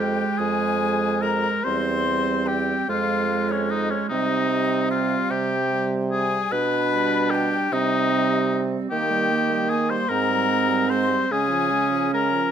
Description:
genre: classical, slow romantic movement for wind quintet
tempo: 49 BPM (dotted quarters)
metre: 6/8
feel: rubato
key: unclear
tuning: A4 = 440 Hz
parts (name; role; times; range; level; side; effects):
- silver concert flute; melody; 0.0-12.5 s; Db5 to C6; -30 LUFS; left 10 dB; none
- warm oboe; second line; 0.0-12.5 s; Db4 to C5; -24 LUFS; left 4 dB; none
- mellow French horn; accompaniment; 0.0-12.5 s; F3 to Bb3; -32 LUFS; equal; none
- warm clarinet; accompaniment; 0.0-12.5 s; Ab3 to D4; -26 LUFS; right 8 dB; none
- warm bassoon; bass; 0.0-12.4 s; E2 to Eb3; -27 LUFS; right 3 dB; none
room: moderate recital hall reverb, RT60 1.4 s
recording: close, detailed microphones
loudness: -20 LUFS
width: side -8 dB against mid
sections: 0.0-12.5 A section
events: none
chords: 0.0 Fm; 1.7 C/E; 2.9 Fm; 4.1 Cm; 6.5 G/B; 7.7 Cm; 8.9 Eb; 10.1 Abmaj7; 11.3 Db

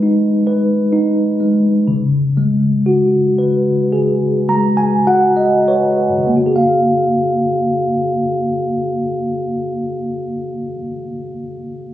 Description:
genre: folk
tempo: 46-68 BPM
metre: 4/4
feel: straight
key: F# major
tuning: A4 = 440 Hz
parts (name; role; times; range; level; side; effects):
- tine electric piano; accompaniment; 0.0-11.9 s; F#2 to A#5; -14 LUFS; equal; medium stereo tremolo
room: moderate recital hall reverb, RT60 1.5 s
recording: recorded on a phone in the room, club reverb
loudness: -13 LUFS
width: side -12 dB against mid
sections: 0.0-6.3 A section; 6.3-11.5 B section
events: slowing down 0.0-6.3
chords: 0.0 G#m; 1.9 C#7sus4; 6.3 F#maj9

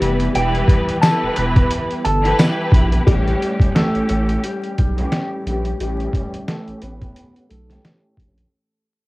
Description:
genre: hip hop, boom-bap hip-hop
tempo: 88 BPM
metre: 4/4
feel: swing 56% on 16ths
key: unclear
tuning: A4 = 440 Hz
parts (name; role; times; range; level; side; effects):
- mellow electric guitar; melody; 0.0-7.8 s; G3 to B5; -22 LUFS; equal; phaser, high-pass filter, low-pass filter, cassette tape, tape echo
- clear symphonic string section; accompaniment; 0.0-8.5 s; A2 to B4; -24 LUFS; equal; high-pass filter, low-pass filter, cassette tape
- warm analog pad; sustained chords; 0.0-3.0 s; E3 to B3; -26 LUFS; equal; chorus, high-pass filter, low-pass filter, cassette tape
- saturated sub bass; bass; 0.0-8.4 s; E1 to B1; -21 LUFS; equal; transformer saturation
- trip hop sampler-style drum kit; drums; 0.0-8.5 s; hi-hat, kick drum, snare drum; -17 LUFS; equal; cassette tape
- tambourine; percussion; 1.0-2.6 s; none; -34 LUFS; left 2 dB; none
room: light reverb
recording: home recording on cassette, vinyl crackle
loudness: -15 LUFS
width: side -20 dB against mid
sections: 0.0-3.1 A section; 3.1-8.5 B section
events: fade-out 3.1-8.5; filter sweep 3.1-8.5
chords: 0.0 Em; 3.1 A7

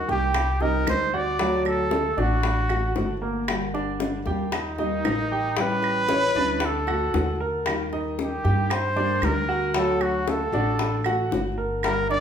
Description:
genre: latin, Cuban son and guajira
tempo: 115 BPM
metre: 4/4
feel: straight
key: unclear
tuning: A4 = 440 Hz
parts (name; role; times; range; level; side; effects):
- breathy trumpet; melody; 0.0-12.2 s; Eb4 to D5; -26 LUFS; right 1 dB; none
- nylon-string guitar; accompaniment; 0.0-12.2 s; D3 to G4; -31 LUFS; left 2 dB; none
- clear grand piano; arpeggios; 0.1-12.2 s; F#3 to G5; -28 LUFS; right 2 dB; none
- upright bass; bass; 0.1-12.2 s; G1 to G2; -29 LUFS; equal; none
- bongos; percussion; 0.1-12.2 s; none; -30 LUFS; left 4 dB; none
- claves; percussion; 0.3-12.1 s; none; -33 LUFS; right 6 dB; none
room: wet large studio reverb, RT60 0.8 s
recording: band playing live in one room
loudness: -22 LUFS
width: side -8 dB against mid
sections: 0.0-3.5 A section; 3.5-12.2 A section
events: none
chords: 0.3 Cm; 1.4 D; 3.5 Gm; 4.5 Eb; 5.6 A7; 6.6 D; 7.7 Eb; 8.7 Gm; 9.8 D

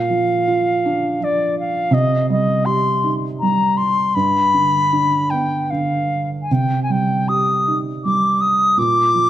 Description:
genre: celtic folk, Celtic slow air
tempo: 74-84 BPM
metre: 3/4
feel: rubato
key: C minor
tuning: A4 = 439 Hz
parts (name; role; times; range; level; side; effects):
- bright reedy baroque flute; melody; 0.0-9.3 s; D5 to Eb6; -17 LUFS; left 2 dB; none
- felt-muted upright piano; accompaniment; 0.0-9.3 s; G2 to G4; -19 LUFS; right 3 dB; none
room: wet recital hall reverb, RT60 1.8 s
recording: nothing above 10.9 kHz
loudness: -15 LUFS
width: side -12 dB against mid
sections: 0.0-9.3 A section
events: none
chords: 0.0 Bb; 1.9 Cm; 4.1 G; 6.5 Cm; 8.8 Bb

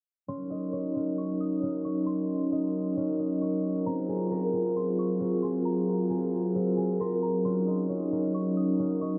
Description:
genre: hip hop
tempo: 134 BPM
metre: 4/4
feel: half-time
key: Eb dorian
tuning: A4 = 440 Hz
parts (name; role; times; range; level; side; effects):
- soft synth bell; melody; 0.3-9.2 s; Bb5 to Eb6; -49 LUFS; equal; chorus, low-pass filter, delay
- airy breathy pad; sustained chords; 0.3-9.2 s; Gb3 to Bb4; -30 LUFS; equal; chorus
- concert harp; arpeggios; 0.3-9.2 s; C4 to Db6; -37 LUFS; equal; low-pass filter, delay
room: moderate huge ambient reverb, RT60 5.2 s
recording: dark, warm production, low-pass filter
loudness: -29 LUFS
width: mono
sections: 0.3-9.2 A section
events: filter sweep 0.3-9.2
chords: 0.3 Ebm7; 3.9 Ab13; 7.4 Ebm7

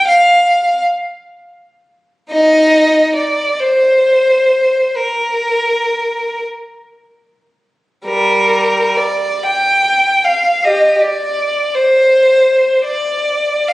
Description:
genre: classical, free, expressive piece for unaccompanied violin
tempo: 30-56 BPM (dotted quarters)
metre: 6/8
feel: rubato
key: Bb major, G minor from 8.1 s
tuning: A4 = 441 Hz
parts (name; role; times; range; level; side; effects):
- rich violin; solo; 0.0-13.7 s; G3 to G5; -11 LUFS; equal; none
room: moderate recital hall reverb, RT60 1.6 s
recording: recorded on a phone in the room, studio reverb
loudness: -11 LUFS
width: side -19 dB against mid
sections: 0.0-8.1 A section; 8.1-13.7 B section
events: none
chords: none

